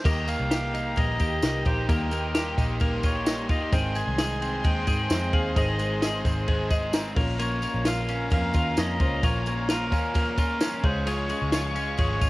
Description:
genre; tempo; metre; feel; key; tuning
jangly indie pop; 131 BPM; 4/4; straight; unclear; A4 = 442 Hz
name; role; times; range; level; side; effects
melodica; melody; 0.0-12.3 s; Bb4 to Ab5; -31 LUFS; equal; cassette tape
crunchy overdriven guitar; accompaniment; 0.0-12.3 s; Ab2 to Ab4; -36 LUFS; right 4 dB; cassette tape
warm upright piano; accompaniment; 0.0-12.3 s; Bb3 to Bb5; -38 LUFS; left 2 dB; none
warm studio string section; sustained chords; 0.0-12.3 s; Db4 to Db6; -35 LUFS; left 1 dB; cassette tape
twelve-string electric guitar; arpeggios; 0.1-12.3 s; Eb3 to Ab4; -30 LUFS; left 2 dB; cassette tape
vintage muted picked electric bass; bass; 0.1-12.3 s; G1 to Ab2; -30 LUFS; equal; none
compact cocktail drum kit; drums; 0.1-12.3 s; crash cymbal, hi-hat, kick drum, ride cymbal, snare drum; -27 LUFS; equal; cassette tape
tambourine; percussion; 0.1-12.3 s; none; -43 LUFS; right 5 dB; none
room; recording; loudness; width
small room ambience; home recording on cassette, faint mains hum; -23 LUFS; side -20 dB against mid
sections
0.1-12.3 A section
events
upright piano fill 6.5-7.4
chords
0.1 Eb; 3.7 Ab; 7.2 Bbm; 10.8 Db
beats
| 0.05 0.51 0.97 1.43 | 1.89 2.35 2.81 3.27 | 3.73 4.19 4.64 5.10 | 5.56 6.02 6.48 6.94 | 7.40 7.86 8.32 8.78 | 9.23 9.69 10.15 10.61 | 11.07 11.53 11.99

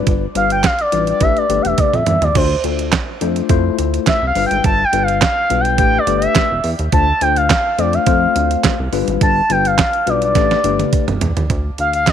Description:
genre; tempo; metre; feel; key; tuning
early-eighties boogie funk; 105 BPM; 4/4; straight; D dorian; A4 = 440 Hz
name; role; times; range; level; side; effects
expressive synth lead; melody; 0.0-12.1 s; C5 to A5; -16 LUFS; equal; chorus
mellow tine electric piano; accompaniment; 0.0-11.1 s; G3 to C5; -21 LUFS; left 15 dB; medium stereo tremolo
chorused synth bass; bass; 0.0-12.1 s; E1 to F2; -20 LUFS; equal; none
detuned 8-bit digital drum machine; drums; 0.1-12.1 s; crash cymbal, handclaps, hi-hat, kick drum, snare drum, toms; -18 LUFS; right 3 dB; none
room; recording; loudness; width
light reverb; 1960s-style stereo; -13 LUFS; side -9 dB against mid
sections
0.0-11.5 A section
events
analog synth lead solo 0.0-11.5; drum fill 1.8-2.4, 10.4-11.5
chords
0.0 G7; 1.2 A9sus4; 2.4 Dm7; 3.5 Fmaj7; 4.4 G7; 5.8 A9sus4; 6.9 Dm7; 8.1 F; 8.9 G7; 10.4 A9sus4; 11.5 Dm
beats
| 0.07 0.64 1.21 1.78 | 2.36 2.93 3.50 4.07 | 4.64 5.21 5.78 6.36 | 6.93 7.50 8.07 8.64 | 9.21 9.78 10.36 10.93 | 11.50 12.07

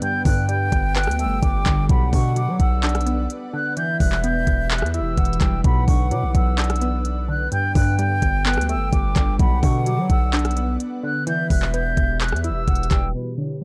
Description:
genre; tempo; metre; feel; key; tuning
hip hop, trap; 128 BPM; 4/4; half-time; B minor; A4 = 441 Hz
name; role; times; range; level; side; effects
mellow concert flute; melody; 0.0-13.6 s; B4 to G6; -30 LUFS; equal; delay
hollow silver concert flute; second line; 0.0-13.1 s; E5 to G5; -32 LUFS; equal; delay
glassy wavetable pluck; accompaniment; 0.0-13.6 s; G2 to E5; -30 LUFS; equal; chorus
ethereal airy pad; sustained chords; 0.0-13.6 s; B2 to F#5; -35 LUFS; equal; ensemble chorus, built-in reverb
trap drum kit; drums; 0.0-13.0 s; handclaps, hi-hat, kick drum, rim click; -23 LUFS; equal; vintage 12-bit sampler grit
distorted 808-style bass; bass; 0.3-13.1 s; E1 to F#3; -24 LUFS; equal; distortion
room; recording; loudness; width
little or no reverb; dark, warm production, low-pass filter; -20 LUFS; mono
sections
0.0-13.1 A section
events
none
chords
0.0 Gadd9; 1.9 Bm; 3.8 Em; 5.6 Bm; 7.5 Gadd9; 9.4 Bm; 11.3 Em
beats
| 0.02 0.49 0.96 1.43 | 1.89 2.36 2.83 3.30 | 3.77 4.24 4.71 5.17 | 5.64 6.11 6.58 7.05 | 7.52 7.99 8.46 8.93 | 9.39 9.86 10.33 10.80 | 11.27 11.74 12.21 12.68 | 13.14 13.61

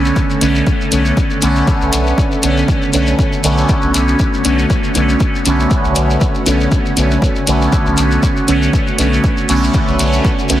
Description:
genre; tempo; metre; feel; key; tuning
dub techno; 119 BPM; 4/4; swing 55% on 16ths; B minor; A4 = 440 Hz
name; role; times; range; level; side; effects
airy breathy pad; sustained chords; 0.0-10.6 s; D3 to A4; -22 LUFS; right 1 dB; chorus, sidechain pumping
resonant sweep polysynth; stabs; 0.0-10.6 s; D3 to C#4; -15 LUFS; equal; chorus, phaser, sidechain pumping, dub echo
soft dub sub bass; bass; 0.0-10.6 s; B1; -17 LUFS; equal; sidechain pumping
shekere; percussion; 0.1-10.6 s; none; -24 LUFS; left 3 dB; none
electronic kick drum; drums; 0.2-10.4 s; none; -16 LUFS; equal; overdrive
electronic hi-hat; drums; 0.4-10.6 s; none; -18 LUFS; equal; overdrive
room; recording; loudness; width
light reverb; heavily compressed radio sound, multiband compression; -11 LUFS; side -13 dB against mid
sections
0.0-10.6 A section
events
none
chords
0.0 Bm9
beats
0.16 | 0.67 1.17 1.67 2.18 | 2.68 3.19 3.69 4.20 | 4.70 5.20 5.71 6.21 | 6.72 7.22 7.72 8.23 | 8.73 9.24 9.74 10.25

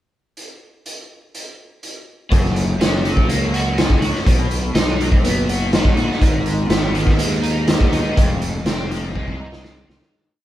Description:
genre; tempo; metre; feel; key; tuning
psychedelic rock; 123 BPM; 4/4; straight; unclear; A4 = 439 Hz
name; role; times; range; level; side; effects
raw garage drum kit; drums; 0.4-10.1 s; hi-hat, kick drum, snare drum; -18 LUFS; equal; none
overdriven electric guitar; riff; 2.3-10.1 s; F2 to Gb4; -22 LUFS; equal; rotary speaker
fuzz fingered electric bass; bass; 2.3-10.0 s; F1 to Eb2; -22 LUFS; equal; overdrive
room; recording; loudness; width
light reverb; band playing live in one room; -15 LUFS; side -13 dB against mid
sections
0.4-2.3 pickup bar; 2.3-10.1 pre-chorus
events
fade-out 8.2-10.1; drum fill 9.1-10.1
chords
0.4 N.C.; 2.3 Gb; 4.3 B; 6.2 Abm; 8.2 Fm7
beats
| 0.36 0.85 1.34 1.83 | 2.32 2.81 3.29 3.78 | 4.27 4.76 5.25 5.73 | 6.22 6.71 7.20 7.68 | 8.17 8.66 9.15 9.64

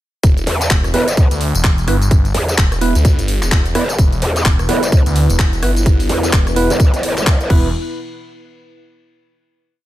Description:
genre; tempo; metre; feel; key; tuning
bass house; 128 BPM; 4/4; swing 60% on 16ths; E minor; A4 = 439 Hz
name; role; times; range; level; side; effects
phased detuned saw bass; bass; 0.2-7.7 s; E1 to D2; -17 LUFS; equal; phaser, sidechain pumping
electronic kick drum; drums; 0.2-7.6 s; none; -12 LUFS; equal; studio reverb
garage drum kit; drums; 0.2-7.6 s; crash cymbal, handclaps, hi-hat, rim click, tambourine; -21 LUFS; left 1 dB; studio reverb
growl bass; bass; 0.5-7.5 s; E1 to E2; -17 LUFS; equal; chorus, tube saturation, sidechain pumping
percussive organ stab; stabs; 0.9-7.7 s; B3 to B4; -21 LUFS; right 3 dB; chorus, sidechain pumping, ping-pong delay
dark analog pad; sustained chords; 4.0-7.7 s; B3 to B4; -25 LUFS; equal; wide subtle chorus, sidechain pumping
room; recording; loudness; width
little or no reverb; none; -12 LUFS; side -15 dB against mid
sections
0.2-7.7 drop; 7.7-9.6 final hit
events
drop 0.2-7.7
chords
0.2 E5; 7.7 N.C.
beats
| 0.23 0.70 1.17 1.64 | 2.11 2.58 3.05 3.52 | 3.98 4.45 4.92 5.39 | 5.86 6.33 6.80 7.27

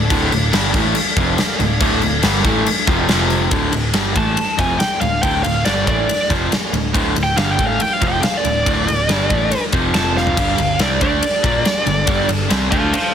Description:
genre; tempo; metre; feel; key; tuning
hard rock; 140 BPM; 4/4; straight; D minor; A4 = 437 Hz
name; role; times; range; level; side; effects
analog string pad; sustained chords; 0.0-3.5, 10.4-13.1 s; F3 to F5; -30 LUFS; right 1 dB; ensemble chorus
crunchy overdriven guitar; riff; 0.0-13.0 s; D2 to D4; -22 LUFS; left 10 dB; none
overdriven semi-hollow guitar; riff; 0.0-13.0 s; D2 to D4; -22 LUFS; right 9 dB; none
modern bright picked electric bass; bass; 0.0-13.0 s; D1 to D2; -23 LUFS; equal; none
huge arena drum kit; drums; 0.1-13.0 s; crash cymbal, kick drum, ride cymbal, snare drum, toms; -19 LUFS; equal; none
high-gain lead guitar; melody; 4.2-13.1 s; D5 to A5; -19 LUFS; equal; distortion
room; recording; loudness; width
light reverb; heavily compressed radio sound, multiband compression; -14 LUFS; side -8 dB against mid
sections
0.0-3.5 A section; 3.5-13.1 B section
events
lead electric guitar solo 3.5-13.1; drum fill 10.2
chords
0.0 Dm; 3.1 F5; 3.5 Dm; 9.9 F5; 10.4 G5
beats
| 0.10 0.53 0.95 1.38 | 1.80 2.23 2.66 3.08 | 3.51 3.94 4.37 4.80 | 5.23 5.66 6.08 6.51 | 6.94 7.37 7.80 8.23 | 8.66 9.09 9.52 9.94 | 10.37 10.80 11.23 11.65 | 12.08 12.51 12.94

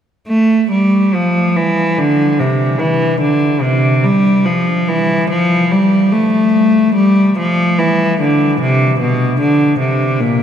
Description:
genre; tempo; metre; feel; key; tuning
classical, baroque-style suite movement for unaccompanied cello; 72 BPM; 4/4; rubato; F major; A4 = 440 Hz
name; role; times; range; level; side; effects
rich cello; solo; 0.3-10.4 s; Bb2 to A3; -11 LUFS; equal; none
room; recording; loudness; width
wet cathedral reverb, RT60 6.5 s; minimal, uncompressed stereo recording; -11 LUFS; side -9 dB against mid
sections
0.3-10.4 A section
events
none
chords
none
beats
| 0.28 1.12 1.97 2.79 | 3.61 4.45 5.30 6.13 | 6.96 7.79 8.60 9.40 | 10.19

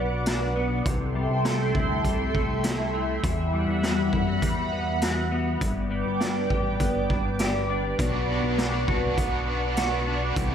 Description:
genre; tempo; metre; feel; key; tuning
dream pop; 101 BPM; 4/4; straight; unclear; A4 = 436 Hz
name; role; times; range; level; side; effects
phased analog pad; sustained chords; 0.0-10.5 s; G3 to D6; -28 LUFS; right 1 dB; phaser, chorus
clean electric guitar; arpeggios; 0.0-10.5 s; G2 to G4; -29 LUFS; left 3 dB; ensemble chorus, tape echo
chorused synth bass; bass; 0.0-10.5 s; G1 to F#2; -30 LUFS; equal; none
raw garage drum kit; drums; 0.3-10.5 s; hi-hat, kick drum, snare drum; -29 LUFS; equal; none
overdriven electric guitar; accompaniment; 8.0-10.5 s; B2 to G4; -31 LUFS; right 2 dB; tremolo, analog chorus
room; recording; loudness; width
moderate lush hall reverb, RT60 1.9 s, small room ambience; none; -23 LUFS; side -8 dB against mid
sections
0.0-10.5 A section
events
none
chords
0.0 Bm; 0.9 C6; 3.2 Emadd9; 5.6 G; 8.0 Bm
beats
0.27 | 0.86 1.45 2.05 2.64 | 3.23 3.83 4.42 5.02 | 5.61 6.21 6.80 7.39 | 7.99 8.58 9.18 9.77 | 10.36

